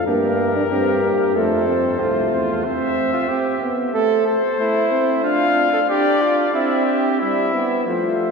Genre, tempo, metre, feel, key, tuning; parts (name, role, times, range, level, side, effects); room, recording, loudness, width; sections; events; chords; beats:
classical, imitative canzona for brass ensemble; 92 BPM; 4/4; straight; A4 = 441 Hz
warm trumpet; melody; 0.0-8.3 s; Bb4 to F5; -22 LUFS; left 5 dB
clear flugelhorn; second line; 0.0-8.3 s; E4 to C5; -22 LUFS; right 3 dB
mellow bass trombone; bass; 0.0-2.6, 7.9-8.3 s; C2 to F3; -24 LUFS; left 1 dB
mellow euphonium; accompaniment; 0.1-8.3 s; G3 to D4; -21 LUFS; right 1 dB
wet cathedral reverb, RT60 4.5 s; minimal, uncompressed stereo recording; -16 LUFS; side -4 dB against mid
0.0-7.9 A section
0.1 Gm; 1.4 F; 2.7 C; 4.0 Am; 5.3 Dm; 6.6 C
| 0.07 0.72 1.37 2.01 | 2.66 3.30 3.95 4.60 | 5.25 5.90 6.56 7.22 | 7.88